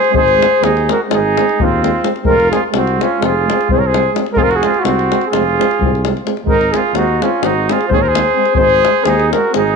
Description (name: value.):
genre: balkan folk, Balkan brass band.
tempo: 257 BPM (eighths).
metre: 9/8.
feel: straight.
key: Ab mixolydian.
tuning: A4 = 439 Hz.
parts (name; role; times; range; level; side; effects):
mellow flugelhorn; melody; 0.0-9.8 s; F4 to Db5; -16 LUFS; left 1 dB; none.
warm trumpet; second line; 0.0-9.8 s; C4 to Bb4; -18 LUFS; right 9 dB; none.
davul; percussion; 0.0-9.7 s; none; -20 LUFS; left 6 dB; none.
clear French horn; accompaniment; 0.1-9.6 s; C4; -22 LUFS; left 13 dB; none.
dark euphonium; accompaniment; 0.1-9.7 s; Ab3; -22 LUFS; right 13 dB; none.
dark tuba; bass; 0.1-9.8 s; F1 to Eb2; -20 LUFS; equal; none.
room: moderate echo chamber reverb, RT60 1.6 s, small room ambience.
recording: 1960s-style stereo with parts hard left and right, nothing above 10.5 kHz.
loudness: -11 LUFS.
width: side -5 dB against mid.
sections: 0.0-9.8 A section.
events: none.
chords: 0.0 Ab; 2.2 Fm; 6.5 Ab.